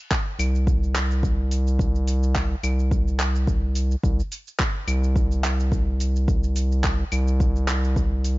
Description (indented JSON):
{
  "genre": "organic downtempo",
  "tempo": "107 BPM",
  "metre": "4/4",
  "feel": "swing 55% on 16ths",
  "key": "unclear",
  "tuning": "A4 = 441 Hz",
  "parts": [
    { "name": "deep house drum kit", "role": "drums", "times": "0.1-8.4 s", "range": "claves, handclaps, hi-hat, shaker", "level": "-29 LUFS", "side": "equal", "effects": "none" },
    { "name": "electronic kick drum", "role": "drums", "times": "0.1-8.1 s", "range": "none", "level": "-23 LUFS", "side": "equal", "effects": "none" },
    { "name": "round analog bass", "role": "bass", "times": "0.4-8.4 s", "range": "C2", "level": "-21 LUFS", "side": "equal", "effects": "sidechain pumping" }
  ],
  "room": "little or no reverb",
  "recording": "nothing above 7.5 kHz",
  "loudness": "-20 LUFS",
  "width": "side -19 dB against mid",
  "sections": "0.0-8.4 A section",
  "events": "none",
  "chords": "none"
}